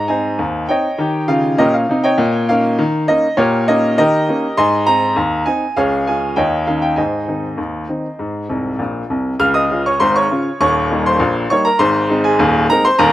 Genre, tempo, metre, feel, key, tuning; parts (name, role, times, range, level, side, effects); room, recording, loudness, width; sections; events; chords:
ragtime piano; 100 BPM; 2/4; straight; Ab major; A4 = 439 Hz
bright grand piano; solo; 0.0-13.1 s; Eb1 to F6; -13 LUFS; equal
little or no reverb; recorded outdoors, with no room sound; -13 LUFS; side -14 dB against mid
0.0-9.4 A section; 9.4-13.1 B section
grand piano fill 8.5-9.4
0.0 Ab; 1.0 Eb7; 2.2 Eb7/Bb; 4.6 Ab; 5.8 Db; 6.4 Eb7; 7.0 Ab; 9.4 Db; 10.6 Eb7; 11.8 Ab